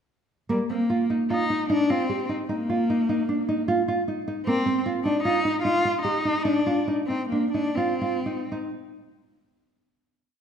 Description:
contemporary instrumental, contemporary; 151 BPM; 5/4; uneven beats; C minor; A4 = 440 Hz
rich cello; melody; 0.5-8.5 s; G3 to F4; -25 LUFS; left 1 dB
nylon-string guitar; arpeggios; 0.5-8.7 s; Bb3 to G4; -26 LUFS; right 2 dB
wet recital hall reverb, RT60 1.4 s; -22 LUFS; side -7 dB against mid
0.5-8.8 A section
slowing down 5.3-8.8
0.5 N.C.; 2.5 Bbsus4; 4.5 F5; 6.5 Cm

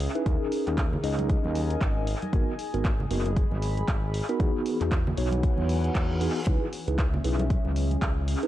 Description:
deep house; 116 BPM; 4/4; swing 58% on 16ths; A4 = 440 Hz
smooth synth bass; bass; 0.0-8.4 s; F#1 to E2; -28 LUFS; equal; sidechain pumping
punchy analog drum machine; drums; 0.0-8.5 s; handclaps, hi-hat; -38 LUFS; right 1 dB; vintage 12-bit sampler grit, tape echo
warbly tape-like pad; texture; 0.0-8.5 s; E3 to B5; -35 LUFS; left 3 dB; chorus, built-in reverb, sidechain pumping
mellow tine electric piano; stabs; 0.2-8.5 s; B3 to D#5; -31 LUFS; right 1 dB; medium stereo tremolo, sidechain pumping, dub echo
electronic kick drum; drums; 0.3-8.1 s; -26 LUFS; equal; overdrive, vintage 12-bit sampler grit
congas; percussion; 0.9-8.0 s; -36 LUFS; right 1 dB
reverse cymbal; sound effects; 5.6-6.5 s; -40 LUFS; right 1 dB
light reverb; echo-heavy mix; -24 LUFS; side -13 dB against mid
0.0-8.5 A section
reverse cymbal 5.6-6.5
0.3 D#7sus4; 2.1 G#m7; 4.4 Emaj9

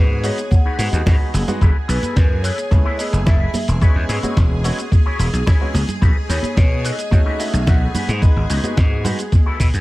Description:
nu-disco, nu disco; 109 BPM; 4/4; straight; A4 = 440 Hz
vibraphone with medium mallets; melody; 0.0-8.1 s; B4 to F#5; -29 LUFS; equal; dub echo
bright concert grand piano; accompaniment; 0.0-9.2 s; G#3 to B4; -28 LUFS; right 1 dB; sidechain pumping, tape echo
string machine, full ensemble; sustained chords; 0.0-9.8 s; G#4 to G#5; -31 LUFS; equal; ensemble chorus, sidechain pumping
gritty slap bass; bass; 0.0-9.8 s; E1 to B2; -19 LUFS; equal; overdrive
electric guitar with an envelope filter; riff; 0.2-9.7 s; D#4 to C#5; -29 LUFS; left 3 dB; ensemble chorus, tape echo
dusty soul sampler-style drum kit; drums; 0.2-9.8 s; hi-hat, shaker, snare drum; -27 LUFS; equal; tape echo
electronic kick drum; drums; 0.5-9.7 s; -14 LUFS; equal
congas; percussion; 0.5-9.4 s; -28 LUFS; right 1 dB; tape echo
digital ambience; echo-heavy mix; -14 LUFS; side -19 dB against mid
0.0-9.8 A section
clean electric guitar fill 9.6
0.0 G#m7; 1.6 F#m11; 3.8 E69; 6.0 B7; 7.9 G#m7

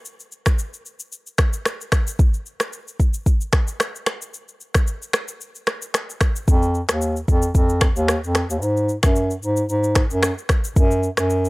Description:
afrobeats; 112 BPM; 4/4; swing 55% on 16ths; A4 = 440 Hz
afro-pop drum kit; drums; 0.1-11.5 s; finger snaps, kick drum, rim click, shaker; -19 LUFS; equal
mellow bass clarinet; bass; 6.5-11.5 s; Eb2 to Ab2; -19 LUFS; equal
digital ambience; dry, gritty hardware recording; -18 LUFS; side -23 dB against mid
0.0-11.5 A section

